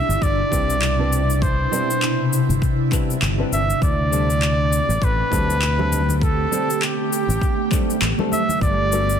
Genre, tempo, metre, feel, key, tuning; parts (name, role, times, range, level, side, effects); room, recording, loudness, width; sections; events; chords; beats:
sunset chillout; 100 BPM; 4/4; swing 57% on 16ths; A4 = 440 Hz
clear flugelhorn; melody; 0.0-9.2 s; G4 to E5; -23 LUFS; equal; digital delay
ethereal airy pad; sustained chords; 0.0-9.2 s; B2 to F#5; -24 LUFS; right 1 dB; ensemble chorus, built-in reverb, phaser
fingered electric bass; bass; 0.1-9.2 s; G1 to D2; -21 LUFS; equal
electronic cabasa and handclaps; drums; 0.1-9.2 s; -26 LUFS; left 3 dB; overdrive
electronic kick drum; drums; 0.2-8.8 s; -22 LUFS; equal; overdrive
nylon-string guitar; accompaniment; 0.5-9.1 s; G3 to B4; -28 LUFS; moving between left 8 dB and right 6 dB; auto-pan, tape echo
congas; percussion; 5.3-8.6 s; -30 LUFS; left 4 dB
light reverb, small room reverb; dense, heavily limited modern master; -17 LUFS; side -8 dB against mid
0.0-9.2 A section
0.0 Cmaj9; 3.8 D7sus4; 8.6 Gmaj9
0.22 0.82 | 1.42 2.02 2.62 3.22 | 3.82 4.42 5.02 5.62 | 6.22 6.82 7.42 8.02 | 8.62